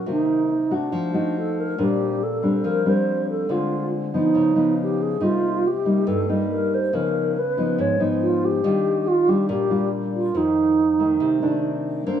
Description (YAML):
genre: bossa nova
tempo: 140 BPM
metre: 4/4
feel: straight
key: unclear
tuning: A4 = 441 Hz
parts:
  - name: mellow hollow alto flute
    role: melody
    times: 0.0-12.2 s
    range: D4 to Db5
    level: -22 LUFS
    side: right 2 dB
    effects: none
  - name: nylon-string guitar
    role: accompaniment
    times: 0.0-12.2 s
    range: F2 to C5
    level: -22 LUFS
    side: left 1 dB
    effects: none
room: moderate plate reverb, RT60 3.1 s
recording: small room ambience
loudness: -19 LUFS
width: side -9 dB against mid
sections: 0.0-12.1 A section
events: none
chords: 0.1 Cm7; 0.9 F7b9; 1.8 Bb69; 3.5 Dm7b5; 4.3 Db9; 5.2 Cm7; 6.9 Db9; 8.6 Ebmaj9; 10.3 F6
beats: | 0.06 0.49 0.92 1.35 | 1.77 2.20 2.63 3.06 | 3.49 3.92 4.35 4.78 | 5.20 5.63 6.06 6.49 | 6.92 7.35 7.78 8.21 | 8.63 9.06 9.49 9.92 | 10.35 10.78 11.21 11.63 | 12.06